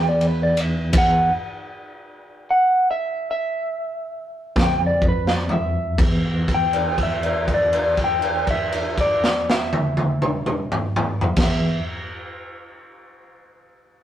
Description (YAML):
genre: slow blues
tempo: 40-56 BPM (dotted quarters)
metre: 12/8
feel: straight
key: unclear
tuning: A4 = 440 Hz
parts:
  - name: electric guitar through a small old amp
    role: melody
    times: 0.0-11.8 s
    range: B4 to G5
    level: -21 LUFS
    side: equal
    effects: none
  - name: overdriven tine electric piano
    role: bass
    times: 0.0-11.8 s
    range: E2 to F2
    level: -24 LUFS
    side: equal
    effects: medium tremolo
  - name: raw garage drum kit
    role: drums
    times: 0.2-11.6 s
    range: crash cymbal, kick drum, ride cymbal, snare drum, toms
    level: -22 LUFS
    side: equal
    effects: none
room: light reverb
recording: rough rehearsal-room recording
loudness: -18 LUFS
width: side -11 dB against mid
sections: 0.0-6.0 A section; 6.0-12.0 B section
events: slowing down 0.0-6.0; drum fill 4.6-6.0; held note 6.0-11.4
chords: 0.0 N.C.; 4.6 Dmadd9/F; 6.0 N.C.